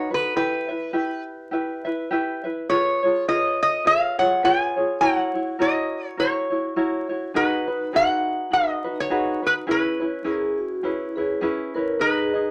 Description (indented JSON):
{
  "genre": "Hawaiian",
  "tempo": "103 BPM",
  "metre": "4/4",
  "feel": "swing 57% on 8ths",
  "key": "unclear",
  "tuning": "A4 = 439 Hz",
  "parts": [
    { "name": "metal-body resonator slide guitar", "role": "melody", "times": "0.0-12.5 s", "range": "B4 to G#5", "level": "-24 LUFS", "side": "equal", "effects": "none" },
    { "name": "tenor ukulele", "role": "accompaniment", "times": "0.0-12.5 s", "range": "C#4 to E5", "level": "-27 LUFS", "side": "equal", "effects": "none" },
    { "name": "vibraphone with soft mallets", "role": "second line", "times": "7.3-12.5 s", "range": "D#4 to B4", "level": "-31 LUFS", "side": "equal", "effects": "none" }
  ],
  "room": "moderate studio reverb, RT60 0.5 s",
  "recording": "vinyl crackle",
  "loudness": "-23 LUFS",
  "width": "mono",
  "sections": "0.0-12.5 A section",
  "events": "none",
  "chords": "0.3 Em; 2.7 C#7/E#; 5.0 F#7; 7.3 B6; 9.7 E6"
}